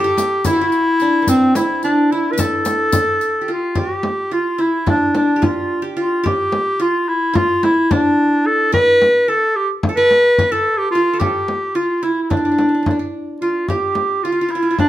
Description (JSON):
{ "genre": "Turkish makam ensemble", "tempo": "218 BPM (eighths)", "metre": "9/8", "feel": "straight", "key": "unclear", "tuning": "A4 = 440 Hz", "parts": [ { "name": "breathy clarinet", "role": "melody", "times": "0.0-14.9 s", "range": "C4 to B4-29c", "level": "-15 LUFS", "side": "equal", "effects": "none" }, { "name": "qanun", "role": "second line", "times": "0.0-14.9 s", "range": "B3-30c to B4-30c", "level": "-21 LUFS", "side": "right 1 dB", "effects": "none" }, { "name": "frame drum", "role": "percussion", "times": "0.2-14.9 s", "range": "none", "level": "-21 LUFS", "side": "left 1 dB", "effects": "none" }, { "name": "riq", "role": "percussion", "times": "0.2-3.3 s", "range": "none", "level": "-29 LUFS", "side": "left 4 dB", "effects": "none" } ], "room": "wet studio reverb, RT60 0.5 s", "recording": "none", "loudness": "-14 LUFS", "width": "side -13 dB against mid", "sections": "0.0-3.8 A section; 3.8-14.9 B section", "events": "none", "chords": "none" }